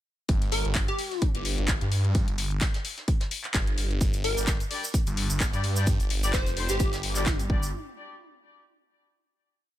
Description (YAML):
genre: bass house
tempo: 129 BPM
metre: 4/4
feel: swing 56% on 16ths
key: G minor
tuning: A4 = 439 Hz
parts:
  - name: phased detuned saw bass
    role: bass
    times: 0.3-7.7 s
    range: F1 to G2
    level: -28 LUFS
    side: equal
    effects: phaser, tube saturation, sidechain pumping
  - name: electronic kick drum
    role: drums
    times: 0.3-7.6 s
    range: none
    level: -26 LUFS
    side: equal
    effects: none
  - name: house drum kit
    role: drums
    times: 0.3-7.5 s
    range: handclaps, hi-hat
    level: -32 LUFS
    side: left 2 dB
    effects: none
  - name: vintage brush drum kit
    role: drums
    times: 0.3-7.4 s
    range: hi-hat, snare drum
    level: -40 LUFS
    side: right 2 dB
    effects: none
  - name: plucky unison lead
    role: melody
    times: 0.5-1.2, 4.2-7.3 s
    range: G4 to C5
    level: -33 LUFS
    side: left 1 dB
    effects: analog chorus, digital delay
  - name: cabasa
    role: percussion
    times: 4.0-7.7 s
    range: none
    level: -35 LUFS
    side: right 2 dB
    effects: none
  - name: mellow horn section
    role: stabs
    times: 4.4-7.7 s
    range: G3 to D5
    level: -36 LUFS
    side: left 4 dB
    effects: sidechain pumping, digital delay
room: little or no reverb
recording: none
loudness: -24 LUFS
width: side -13 dB against mid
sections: 0.3-7.7 drop; 7.7-9.6 final hit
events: drop 0.3-7.7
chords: 0.3 G5; 7.7 N.C.